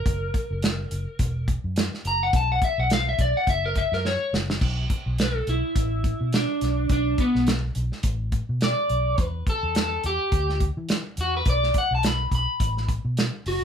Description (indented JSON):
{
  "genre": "straight-eighth soul blues",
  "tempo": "105 BPM",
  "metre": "4/4",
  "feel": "swing 56% on 16ths",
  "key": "B minor",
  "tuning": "A4 = 439 Hz",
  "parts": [
    { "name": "electric slide guitar", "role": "melody", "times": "0.0-13.6 s", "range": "B3 to B5", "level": "-25 LUFS", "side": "left 1 dB", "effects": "none" },
    { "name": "vintage muted fingered electric bass", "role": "bass", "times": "0.1-13.6 s", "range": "E1 to E3", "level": "-27 LUFS", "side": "equal", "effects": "none" },
    { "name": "warm soul drum kit", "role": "drums", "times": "0.1-13.6 s", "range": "crash cymbal, hi-hat, kick drum, snare drum", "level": "-25 LUFS", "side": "equal", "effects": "none" }
  ],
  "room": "light reverb",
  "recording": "band playing live in one room",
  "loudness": "-22 LUFS",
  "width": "side -8 dB against mid",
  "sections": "0.0-4.6 A section; 4.6-13.6 A section",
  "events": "electric slide guitar solo 0.0-4.6, 4.6-13.6; drum fill 4.1-4.6",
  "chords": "0.1 F#7; 2.3 Bsus4; 3.5 F#7; 4.6 Bm7; 9.2 Em7; 11.5 B5"
}